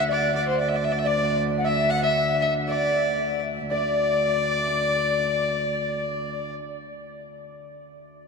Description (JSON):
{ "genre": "medieval", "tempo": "116 BPM", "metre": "2/4", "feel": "straight", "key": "D mixolydian", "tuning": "A4 = 436 Hz", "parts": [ { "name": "rich fiddle", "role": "melody", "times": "0.0-6.5 s", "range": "C5 to F#5", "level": "-26 LUFS", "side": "equal", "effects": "none" }, { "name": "alto recorder", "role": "second line", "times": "0.0-6.5 s", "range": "D5 to F#5", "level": "-27 LUFS", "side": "left 6 dB", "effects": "none" }, { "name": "concert harp", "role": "second line", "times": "0.0-7.2 s", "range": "C5 to F#5", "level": "-29 LUFS", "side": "right 5 dB", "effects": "none" }, { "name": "warm viola da gamba", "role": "drone", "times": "0.0-6.6 s", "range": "D2", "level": "-30 LUFS", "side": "left 1 dB", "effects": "none" } ], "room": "wet cathedral reverb, RT60 6.8 s", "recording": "dark, warm production", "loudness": "-21 LUFS", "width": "side -4 dB against mid", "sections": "0.0-3.7 A section; 3.7-5.8 B section", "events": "none", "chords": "none" }